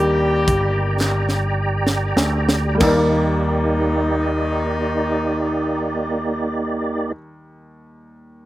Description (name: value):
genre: slow gospel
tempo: 30-41 BPM (dotted quarters)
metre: 6/8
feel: straight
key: Eb major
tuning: A4 = 441 Hz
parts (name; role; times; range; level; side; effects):
- mellow horn section; melody; 0.0-7.1 s; Eb3 to G4; -24 LUFS; left 2 dB; slapback echo
- warm upright piano; accompaniment; 0.0-8.5 s; Eb2 to D5; -24 LUFS; left 1 dB; slapback echo
- tonewheel organ; sustained chords; 0.0-7.1 s; Bb3 to Bb5; -22 LUFS; right 2 dB; slow rotary speaker, chorus vibrato
- vintage slap bass; bass; 0.0-7.1 s; G1 to Eb2; -23 LUFS; equal; none
- crisp fusion drum kit; drums; 0.5-3.1 s; crash cymbal, hi-hat, kick drum, snare drum; -21 LUFS; right 1 dB; none
- group handclap; percussion; 1.0-3.4 s; none; -30 LUFS; right 2 dB; none
room: little or no reverb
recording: recorded outdoors, with no room sound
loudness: -17 LUFS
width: side -15 dB against mid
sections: 0.0-2.8 A section; 2.8-6.8 B section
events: slowing down 0.0-2.8; drum fill 1.0-2.8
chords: 0.0 Ebmaj7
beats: 1.00 | 2.81 4.82